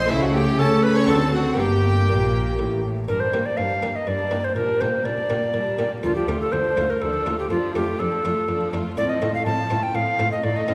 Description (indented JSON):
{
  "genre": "classical, baroque-style concerto movement with solo episodes",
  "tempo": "122 BPM",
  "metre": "3/4",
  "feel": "straight",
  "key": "G minor",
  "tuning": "A4 = 440 Hz",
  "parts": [
    { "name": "rich chamber violin section", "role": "melody", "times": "0.0-10.7 s", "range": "F4 to C#6", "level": "-38 LUFS", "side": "equal", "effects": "none" },
    { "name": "tenor recorder", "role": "melody", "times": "0.0-10.7 s", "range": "E4 to A5", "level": "-26 LUFS", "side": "equal", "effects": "none" },
    { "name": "rich chamber violin section", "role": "second line", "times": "0.0-10.7 s", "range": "A3 to C#5", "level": "-34 LUFS", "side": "equal", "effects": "none" },
    { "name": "buff-stop harpsichord", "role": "accompaniment", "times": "0.0-10.7 s", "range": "D2 to G4", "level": "-32 LUFS", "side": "equal", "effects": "none" },
    { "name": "warm studio viola section", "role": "accompaniment", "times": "0.0-10.7 s", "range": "F3 to C4", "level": "-31 LUFS", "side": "equal", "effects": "none" },
    { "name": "rich chamber double bass section", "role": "bass", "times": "0.0-3.1 s", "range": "G1 to C#3", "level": "-27 LUFS", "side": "equal", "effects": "none" },
    { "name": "warm chamber cello section", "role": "bass", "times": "0.0-10.7 s", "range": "D2 to C#4", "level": "-30 LUFS", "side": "equal", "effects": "none" }
  ],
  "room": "wet recital hall reverb, RT60 1.6 s",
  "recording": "heard from further back in the room",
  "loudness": "-22 LUFS",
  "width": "mono",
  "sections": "0.0-3.1 A section; 3.1-10.7 B section",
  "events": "none",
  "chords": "0.1 A/C#; 1.1 D7; 1.6 Gm; 4.6 Gm/Bb; 6.0 Dm; 7.5 Dm/F; 9.0 F/A"
}